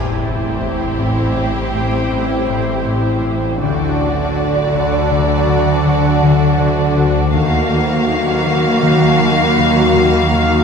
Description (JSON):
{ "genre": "cinematic, suspense film score", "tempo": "80 BPM", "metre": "5/4", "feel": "straight", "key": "A dorian", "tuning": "A4 = 439 Hz", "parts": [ { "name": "dark symphonic violin section", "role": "melody", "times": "0.0-10.6 s", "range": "C5 to E#5", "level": "-22 LUFS", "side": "left 2 dB", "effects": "none" }, { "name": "rich symphonic violin section", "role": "second line", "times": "0.0-10.6 s", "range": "F#4 to G4", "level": "-24 LUFS", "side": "left 1 dB", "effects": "none" }, { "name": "rich symphonic viola section", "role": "accompaniment", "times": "0.0-10.6 s", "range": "A#3 to E4", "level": "-23 LUFS", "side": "equal", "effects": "none" }, { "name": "bubbling stepped-filter texture", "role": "sustained chords", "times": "0.0-10.6 s", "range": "E4 to G5", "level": "-23 LUFS", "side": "right 1 dB", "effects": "chorus, built-in reverb" }, { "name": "dark French horn section", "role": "sustained chords", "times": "0.0-10.6 s", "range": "F#3 to F#4", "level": "-24 LUFS", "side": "left 3 dB", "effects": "none" }, { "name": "concert harp", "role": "riff", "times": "0.0-10.6 s", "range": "A2 to D#4", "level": "-20 LUFS", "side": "left 7 dB", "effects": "none" }, { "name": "rich symphonic double bass section", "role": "bass", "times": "0.0-10.6 s", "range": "A1 to D#2", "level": "-21 LUFS", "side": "right 3 dB", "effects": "none" }, { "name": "warm symphonic cello section", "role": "bass", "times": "0.0-10.6 s", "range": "A2 to D#3", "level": "-21 LUFS", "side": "right 3 dB", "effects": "none" }, { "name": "overtone-sweeping drone", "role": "drone", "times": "0.0-10.6 s", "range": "A1 to D#2", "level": "-24 LUFS", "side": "equal", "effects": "chorus, built-in reverb, phaser" }, { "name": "impact", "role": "sound effects", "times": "0.0-3.6 s", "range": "none", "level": "-30 LUFS", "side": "equal", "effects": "none" }, { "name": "vibraphone with medium mallets", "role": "texture", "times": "1.0-7.4 s", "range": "C4 to D5", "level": "-25 LUFS", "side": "right 5 dB", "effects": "none" }, { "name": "warm symphonic violin section", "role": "texture", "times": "7.4-10.6 s", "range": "A#5 to B5", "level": "-32 LUFS", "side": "left 6 dB", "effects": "none" } ], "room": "wet scoring stage reverb, RT60 1.7 s", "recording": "minimal, uncompressed stereo recording", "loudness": "-13 LUFS", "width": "side -6 dB against mid", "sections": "0.0-10.6 A section", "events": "impact 0.0-3.6", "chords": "0.0 Am7; 3.6 D; 7.3 D#madd9" }